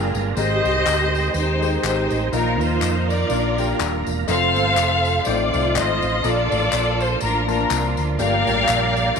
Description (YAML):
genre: uptempo gospel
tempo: 123 BPM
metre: 4/4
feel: swing 56% on 8ths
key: F major from 4.3 s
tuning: A4 = 440 Hz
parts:
  - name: warm studio string section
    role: melody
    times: 0.0-9.2 s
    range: D4 to F5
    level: -20 LUFS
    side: left 1 dB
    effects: slapback echo
  - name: warm grand piano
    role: accompaniment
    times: 0.0-8.9 s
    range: G2 to A5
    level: -27 LUFS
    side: left 11 dB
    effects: none
  - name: tonewheel organ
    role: sustained chords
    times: 0.0-9.2 s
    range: D3 to C5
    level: -27 LUFS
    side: right 12 dB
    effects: fast rotary speaker, chorus vibrato
  - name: fingered electric bass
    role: bass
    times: 0.0-9.2 s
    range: Eb1 to F2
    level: -24 LUFS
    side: right 1 dB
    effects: none
  - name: tambourine and handclaps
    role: percussion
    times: 0.1-9.2 s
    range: none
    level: -30 LUFS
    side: left 11 dB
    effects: none
room: moderate echo chamber reverb, RT60 2.2 s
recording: 1960s-style stereo with parts hard left and right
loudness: -17 LUFS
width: side -6 dB against mid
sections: 0.0-4.3 A section; 4.3-9.2 A section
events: none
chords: 0.4 Abmaj7; 2.3 Bbsus4; 3.3 Bb; 4.3 F; 5.3 F7/A; 6.2 Bbmaj7; 8.2 Gm7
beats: | 0.37 0.86 1.35 1.84 | 2.33 2.81 3.30 3.79 | 4.28 4.77 5.26 5.75 | 6.24 6.73 7.22 7.71 | 8.19 8.68 9.17